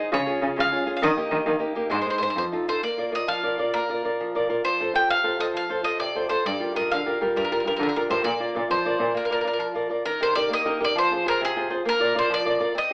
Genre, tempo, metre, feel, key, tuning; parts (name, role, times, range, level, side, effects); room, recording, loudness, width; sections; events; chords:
italian folk, Italian serenade; 133 BPM (dotted quarters); 6/8; straight; Bb major; A4 = 440 Hz
bowl-back mandolin; melody; 0.0-12.9 s; Ab4 to G5; -28 LUFS; equal
flamenco guitar; accompaniment; 0.0-12.9 s; C3 to D5; -28 LUFS; equal
warm cello; bass; 0.1-2.4, 6.5-9.1 s; F2 to G3; -29 LUFS; equal
moderate large studio reverb, RT60 0.9 s; band playing live in one room, AM radio sound; -24 LUFS; mono
0.0-2.8 A section; 2.8-10.1 B section; 10.1-12.9 C section
0.1 Db; 1.0 Eb; 1.9 Ab; 2.4 F7; 2.8 Bb; 4.6 F; 6.4 Gm7; 8.2 Bb; 10.1 Eb; 11.0 Fm; 11.9 Bb